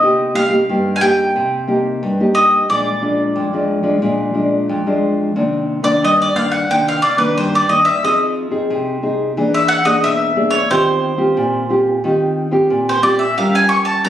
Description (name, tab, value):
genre	samba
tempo	90 BPM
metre	4/4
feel	straight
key	C minor from 5.4 s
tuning	A4 = 440 Hz
part	bowl-back mandolin	melody	0.0-14.1 s	B4 to Db6	-15 LUFS	equal	none
part	nylon-string guitar	accompaniment	0.0-14.1 s	F2 to Bb4	-16 LUFS	equal	none
room	moderate large studio reverb, RT60 1.2 s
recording	recorded on a phone in the room, studio reverb, compression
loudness	-13 LUFS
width	side -11 dB against mid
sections	0.0-5.4 A section; 5.4-14.1 B section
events	mandolin solo 5.4-14.1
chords	0.0 Cm7; 2.7 Bb7; 5.4 Cm9; 8.0 Fm7; 9.4 E7#11; 10.7 Eb69; 13.4 Gm7b5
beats	| 0.02 0.69 1.35 2.02 | 2.69 3.36 4.03 4.69 | 5.36 6.03 6.70 7.36 | 8.03 8.70 9.37 10.04 | 10.70 11.37 12.04 12.71 | 13.37 14.04